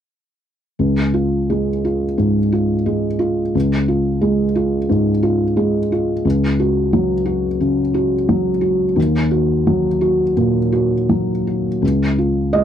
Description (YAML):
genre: neoclassical minimalist piano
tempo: 88 BPM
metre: 4/4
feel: rubato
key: Db major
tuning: A4 = 440 Hz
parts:
  - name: felt-muted upright piano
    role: solo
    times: 0.8-12.6 s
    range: Db2 to Eb5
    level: -15 LUFS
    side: equal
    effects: none
room: light reverb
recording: dry, close 1970s-style studio recording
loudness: -15 LUFS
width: side -9 dB against mid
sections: 0.8-11.8 A section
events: none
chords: 0.8 Db; 6.2 Gb5/Db; 9.0 Ebm; 11.8 Db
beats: | 0.79 1.49 2.18 2.87 | 3.55 4.22 4.90 5.57 | 6.25 6.92 7.61 8.29 | 8.97 9.67 10.37 11.09 | 11.82 12.52